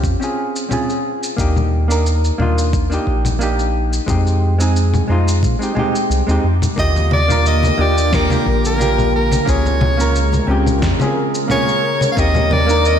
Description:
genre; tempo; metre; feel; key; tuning
sunset chillout; 89 BPM; 4/4; swing 54% on 16ths; Eb major; A4 = 440 Hz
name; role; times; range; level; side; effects
hollow-body jazz guitar; accompaniment; 0.0-13.0 s; D3 to Bb4; -20 LUFS; equal; auto-pan, low-pass filter, ping-pong delay, slapback echo
round analog bass; bass; 0.0-13.0 s; Bb1 to Bb2; -17 LUFS; equal; none
electronic kick drum; drums; 0.0-12.3 s; none; -21 LUFS; equal; none
electronic shaker, congas and snare drum; drums; 0.0-13.0 s; none; -24 LUFS; left 3 dB; none
bright soprano saxophone; melody; 6.8-13.0 s; Bb4 to F5; -19 LUFS; equal; ping-pong delay, slapback echo
lush unison pad; sustained chords; 7.2-13.0 s; Db3 to C5; -22 LUFS; equal; chorus
congas; percussion; 7.0-12.7 s; none; -24 LUFS; left 2 dB; none
room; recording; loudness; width
moderate lush hall reverb, RT60 1.8 s, digital ambience; big arena sound; -14 LUFS; side -8 dB against mid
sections
0.0-13.0 A section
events
none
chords
0.0 Bbm7 (rootless); 1.4 Ebmaj9; 4.1 Fm9; 6.8 Ebmaj7; 9.5 Bbm7/Db; 12.2 Cm7/Eb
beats
0.04 0.71 | 1.39 2.06 2.73 3.41 | 4.08 4.76 5.43 6.10 | 6.78 7.45 8.13 8.80 | 9.47 10.15 10.82 11.50 | 12.17 12.85

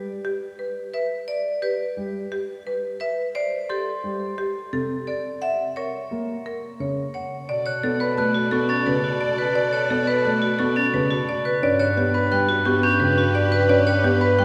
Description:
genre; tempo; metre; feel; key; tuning
classical, minimalist pattern music; 174 BPM; 6/4; straight; B minor from 7.5 s; A4 = 442 Hz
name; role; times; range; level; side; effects
dark grand piano; accompaniment; 0.0-14.4 s; C3 to C#4; -29 LUFS; equal; none
marimba with hard mallets; melody; 0.2-14.4 s; G4 to A5; -30 LUFS; equal; none
vibraphone with hard mallets; arpeggios; 0.9-14.4 s; C#4 to E5; -28 LUFS; equal; none
glockenspiel with soft plastic mallets; arpeggios; 3.7-14.4 s; B5 to A6; -28 LUFS; equal; none
rich chamber string section; sustained chords; 7.5-14.4 s; G4 to D5; -32 LUFS; equal; none
warm bass clarinet; bass; 7.5-14.4 s; G2 to B2; -28 LUFS; equal; none
room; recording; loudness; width
wet church reverb, RT60 3.7 s; recorded in a church or concert hall; -23 LUFS; mono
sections
0.0-7.5 A section; 7.5-14.4 B section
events
none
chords
0.0 Em7 (rootless); 3.4 C5; 5.4 F#; 7.5 Bm7; 11.6 Gmaj7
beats
0.25 0.59 0.94 | 1.28 1.63 1.97 2.31 2.66 3.00 | 3.35 3.69 4.04 4.38 4.73 5.07 | 5.42 5.76 6.11 6.45 6.80 7.14 | 7.49 7.83 8.18 8.52 8.87 9.21 | 9.56 9.90 10.25 10.59 10.94 11.28 | 11.63 11.97 12.31 12.66 13.01 13.35 | 13.70 14.04 14.38

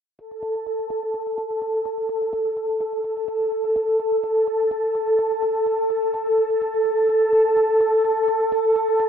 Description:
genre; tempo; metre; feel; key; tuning
piano house; 126 BPM; 4/4; straight; unclear; A4 = 442 Hz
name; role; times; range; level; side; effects
string machine, violins; sustained chords; 0.2-9.1 s; A4 to A5; -19 LUFS; equal; ensemble chorus
electronic hi-hat; drums; 0.2-9.1 s; none; -47 LUFS; left 1 dB; none
room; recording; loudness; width
moderate plate reverb, RT60 1.8 s; dark, warm production, low-pass filter; -19 LUFS; side -8 dB against mid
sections
0.2-9.1 A section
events
filter sweep 0.2-9.1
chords
none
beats
| 0.19 0.66 1.14 1.61 | 2.09 2.57 3.04 3.52 | 4.00 4.47 4.95 5.42 | 5.90 6.38 6.85 7.33 | 7.80 8.28 8.76

